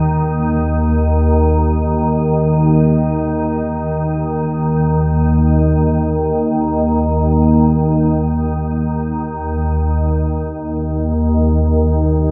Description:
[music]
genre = ambient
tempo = free time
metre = none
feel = none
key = unclear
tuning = A4 = 440 Hz
[part]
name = organ-like drone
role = solo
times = 0.0-12.3 s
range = Eb2 to Eb3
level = -16 LUFS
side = equal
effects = ensemble chorus, built-in reverb
[sound]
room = wet cathedral reverb, RT60 5.0 s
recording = in a vast, echoing space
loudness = -16 LUFS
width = mono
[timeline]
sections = 0.0-10.2 A section; 10.2-12.3 B section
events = none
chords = none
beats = free time

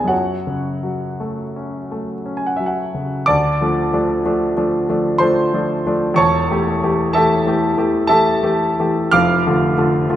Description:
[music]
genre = classical, romantic nocturne for solo piano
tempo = 54-65 BPM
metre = 3/4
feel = rubato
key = F# minor, D minor from 3.3 s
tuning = A4 = 440 Hz
[part]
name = clear grand piano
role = solo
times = 0.0-10.2 s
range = E1 to F6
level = -15 LUFS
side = equal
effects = none
[sound]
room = wet recital hall reverb, RT60 1.6 s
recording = none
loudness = -15 LUFS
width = side -12 dB against mid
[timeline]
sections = 0.0-3.3 A section; 3.3-10.2 B section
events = none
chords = 0.1 F#m; 3.3 Dm; 6.2 A7/E; 9.1 Dm/F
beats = | 0.11 1.21 2.26 | 3.29 4.25 5.21 | 6.18 7.15 8.09 | 9.14 10.10

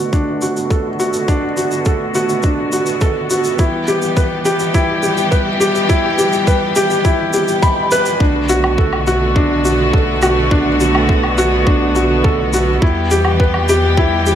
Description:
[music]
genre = piano and strings electronica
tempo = 104 BPM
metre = 4/4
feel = straight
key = unclear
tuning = A4 = 440 Hz
[part]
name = warm chamber string section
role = sustained chords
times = 0.0-14.4 s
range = D3 to G4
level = -19 LUFS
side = equal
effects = low-pass filter
[part]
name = felt-muted upright piano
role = riff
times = 0.0-14.4 s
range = D4 to B5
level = -16 LUFS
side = equal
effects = ping-pong delay
[part]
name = electronic kick drum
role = drums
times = 0.1-14.1 s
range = none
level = -15 LUFS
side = equal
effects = overdrive
[part]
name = shaker and woodblock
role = drums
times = 0.1-14.4 s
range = none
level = -24 LUFS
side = right 1 dB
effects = high-pass filter on perc, high-pass filter on room
[part]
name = dark detuned saw bass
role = bass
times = 8.2-14.4 s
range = B1 to E2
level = -19 LUFS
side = equal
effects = sidechain pumping
[sound]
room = moderate recital hall reverb, RT60 1.6 s, studio ambience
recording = none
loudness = -12 LUFS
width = side -9 dB against mid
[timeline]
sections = 0.0-8.2 A section; 8.2-14.4 B section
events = build-up 0.0-8.2; filter sweep on string section 0.0-8.2; drop 8.2-14.4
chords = 0.0 Bm7; 3.6 Em; 8.2 Bm7; 12.8 Em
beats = 0.13 0.70 | 1.28 1.86 2.44 3.01 | 3.59 4.17 4.74 5.32 | 5.90 6.47 7.05 7.63 | 8.21 8.78 9.36 9.94 | 10.51 11.09 11.67 12.24 | 12.82 13.40 13.97

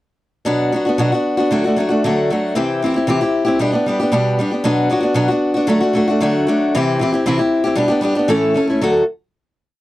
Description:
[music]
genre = rock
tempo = 115 BPM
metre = 4/4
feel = straight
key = D major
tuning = A4 = 440 Hz
[part]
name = picked old ladder-braced acoustic guitar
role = solo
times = 0.5-9.0 s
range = A2 to A4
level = -14 LUFS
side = equal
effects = none
[sound]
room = light reverb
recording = dry, close 1970s-style studio recording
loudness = -14 LUFS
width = side -16 dB against mid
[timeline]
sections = 0.4-8.8 pre-chorus; 8.8-9.8 final chord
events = none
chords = 0.4 Bm; 1.5 D; 2.5 C; 3.6 G/B; 4.6 Bm; 5.7 D; 6.7 C; 7.8 G/B; 8.3 A; 8.8 D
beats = | 0.45 0.97 1.50 2.02 | 2.55 3.07 3.60 4.12 | 4.64 5.16 5.69 6.21 | 6.73 7.25 7.77 8.29 | 8.81

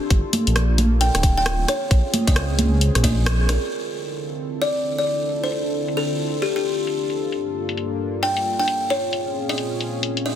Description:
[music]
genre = UK garage, two-step garage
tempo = 133 BPM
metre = 4/4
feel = swing 62% on 16ths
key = D minor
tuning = A4 = 440 Hz
[part]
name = warm analog pad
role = sustained chords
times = 0.0-10.4 s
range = G2 to A4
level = -29 LUFS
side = right 1 dB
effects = chorus, sidechain pumping
[part]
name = deep dark ambient pad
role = texture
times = 0.0-10.4 s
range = D4 to C6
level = -33 LUFS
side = equal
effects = chorus, built-in reverb, sidechain pumping
[part]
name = dark detuned saw bass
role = bass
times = 0.1-3.6 s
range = D1 to Db2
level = -19 LUFS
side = equal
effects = none
[part]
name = electronic kick drum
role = drums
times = 0.1-3.1 s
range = none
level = -18 LUFS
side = equal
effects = none
[part]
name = garage drum kit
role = drums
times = 0.1-10.2 s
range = congas, hi-hat, rim click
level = -23 LUFS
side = equal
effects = low-pass filter on hats, soft clipping on snare, low-pass filter on snare, low-pass filter on perc
[part]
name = buzzing kalimba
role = melody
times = 1.0-10.4 s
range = G4 to G5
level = -24 LUFS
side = left 1 dB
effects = ping-pong delay
[sound]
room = light reverb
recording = dense, heavily limited modern master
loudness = -19 LUFS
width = side -10 dB against mid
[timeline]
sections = 0.0-3.7 A section; 3.7-10.4 B section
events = band accent 3.3; filter sweep on drum 3.7-10.4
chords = 0.1 Gm7; 1.7 Bbm7; 3.7 Dm7; 7.3 Gm7; 8.9 Bbm7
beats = | 0.11 0.56 1.01 1.46 | 1.91 2.36 2.81 3.26 | 3.71 4.17 4.62 5.07 | 5.52 5.97 6.42 6.87 | 7.32 7.78 8.23 8.68 | 9.13 9.58 10.03

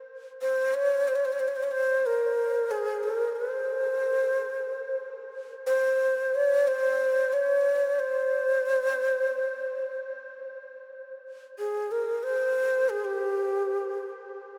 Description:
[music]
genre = arabic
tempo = free time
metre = none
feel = none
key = C maqam hijaz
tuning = A4 = 440 Hz
[part]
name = breathy ney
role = solo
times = 0.4-14.0 s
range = G4 to Db5+32c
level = -28 LUFS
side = equal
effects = tape echo
[sound]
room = wet huge ambient reverb, RT60 7.4 s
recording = dreamy mix soaked in reverb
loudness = -27 LUFS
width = mono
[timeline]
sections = 0.1-10.6 A section; 10.6-14.6 B section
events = none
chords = none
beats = free time

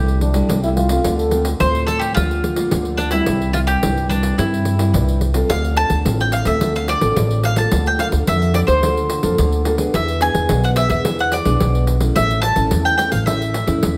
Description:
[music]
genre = samba and choro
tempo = 108 BPM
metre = 4/4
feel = straight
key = D minor from 5.5 s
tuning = A4 = 441 Hz
[part]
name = bowl-back mandolin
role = melody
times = 0.0-14.0 s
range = D4 to A5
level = -23 LUFS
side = equal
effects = none
[part]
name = nylon-string guitar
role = accompaniment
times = 0.0-14.0 s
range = G2 to A4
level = -24 LUFS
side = equal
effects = none
[part]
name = upright bass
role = bass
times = 0.0-14.0 s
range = A1 to G2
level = -22 LUFS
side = equal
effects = none
[part]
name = pandeiro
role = percussion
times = 0.1-14.0 s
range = none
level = -26 LUFS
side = equal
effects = none
[part]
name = growling trombone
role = second line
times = 0.2-1.5 s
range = D4 to A4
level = -24 LUFS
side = equal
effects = none
[sound]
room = wet large studio reverb, RT60 1.3 s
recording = none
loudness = -17 LUFS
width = mono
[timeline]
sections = 0.0-5.5 A section; 5.5-14.0 B section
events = none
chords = 0.0 Am7/C; 1.0 Dm7; 2.2 Bb/D; 3.3 C; 5.5 Dm7; 7.7 Bbmaj7/D; 9.9 E7; 12.2 A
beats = 0.49 | 1.05 1.60 2.16 2.72 | 3.27 3.83 4.38 4.94 | 5.50 6.05 6.61 7.16 | 7.72 8.27 8.83 9.38 | 9.94 10.49 11.05 11.61 | 12.16 12.72 13.27 13.83

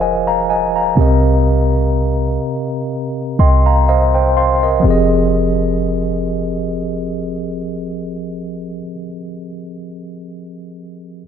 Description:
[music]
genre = contemporary R&B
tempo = 62 BPM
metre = 4/4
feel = swing 54% on 16ths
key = F minor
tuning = A4 = 441 Hz
[part]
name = mellow tine electric piano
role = accompaniment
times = 0.0-11.2 s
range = C3 to C6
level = -17 LUFS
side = equal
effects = medium stereo tremolo
[part]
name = clean 808-style bass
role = bass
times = 0.0-8.8 s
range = F1 to C2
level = -16 LUFS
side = equal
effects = none
[sound]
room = moderate plate reverb, RT60 2.7 s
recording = dreamy mix soaked in reverb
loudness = -13 LUFS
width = side -8 dB against mid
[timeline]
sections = 0.0-4.8 A section; 4.8-8.7 B section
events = tine electric piano fill 2.9-4.8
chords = 0.0 Bbm11/F; 1.0 Cm7; 4.8 Fm9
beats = 0.00 | 0.97 1.94 2.91 3.87 | 4.84 5.81 6.78 7.75

